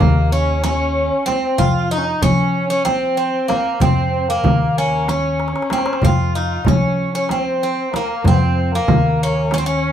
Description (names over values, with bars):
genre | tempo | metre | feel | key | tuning
Turkish makam ensemble | 190 BPM (eighths) | 7/8 | straight | unclear | A4 = 441 Hz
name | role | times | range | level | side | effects
Greek bouzouki | melody | 0.0-9.9 s | Bb3 to F4 | -19 LUFS | right 2 dB | none
dark kamancheh | second line | 0.0-9.9 s | Bb3 to F4 | -24 LUFS | left 3 dB | none
upright bass | bass | 0.0-9.9 s | Eb2 to F3 | -19 LUFS | equal | none
darbuka | percussion | 0.0-9.7 s | none | -22 LUFS | left 3 dB | none
frame drum | percussion | 0.0-9.7 s | none | -22 LUFS | right 3 dB | none
room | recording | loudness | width
wet studio reverb, RT60 0.5 s | band playing live in one room | -15 LUFS | side -9 dB against mid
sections
0.0-9.9 A section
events
drum fill 5.4-6.0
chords
none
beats
0.01 0.33 0.64 0.96 1.28 | 1.59 1.91 2.23 2.54 2.86 3.18 3.50 | 3.81 4.13 4.45 4.76 5.08 5.39 5.71 | 6.03 6.34 6.66 6.98 7.29 7.61 7.93 | 8.24 8.56 8.88 9.19 9.51 9.83